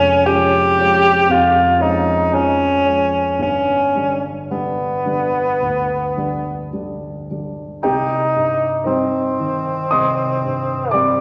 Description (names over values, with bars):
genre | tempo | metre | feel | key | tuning
classical, romantic duo for bassoon and grand piano | 53-60 BPM | 4/4 | rubato | C minor | A4 = 442 Hz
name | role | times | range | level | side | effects
warm bassoon | melody | 0.0-11.2 s | G3 to G4 | -18 LUFS | equal | none
dark concert grand piano | accompaniment | 0.0-11.2 s | F1 to Eb6 | -23 LUFS | equal | none
room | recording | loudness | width
wet scoring stage reverb, RT60 1.5 s | none | -17 LUFS | mono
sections
0.0-7.8 A section; 7.8-11.2 B section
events
none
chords
0.0 Db/F; 3.4 G; 7.8 Cm